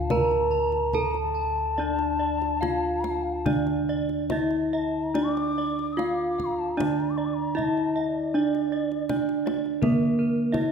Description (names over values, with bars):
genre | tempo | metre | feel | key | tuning
Javanese gamelan | 71-86 BPM | 4/4 | straight | D pelog | A4 = 444 Hz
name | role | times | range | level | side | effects
gamelan-type bronze metallophone | melody | 0.0-10.7 s | Bb3 to Bb4 | -25 LUFS | right 2 dB | none
mellow bansuri | second line | 0.0-9.6 s | D5 to Eb6+23c | -31 LUFS | left 4 dB | none
gamelan-type bronze metallophone | arpeggios | 0.0-10.7 s | Bb4 to Bb5 | -33 LUFS | right 2 dB | none
gamelan-type bossed gongs | bass | 0.0-10.7 s | D2 to Eb4+35c | -32 LUFS | left 1 dB | none
kendang | percussion | 0.1-10.7 s | none | -34 LUFS | left 2 dB | none
room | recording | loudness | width
moderate concert hall reverb, RT60 1.8 s | minimal, uncompressed stereo recording | -23 LUFS | side -6 dB against mid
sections
0.0-10.7 A section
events
none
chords
none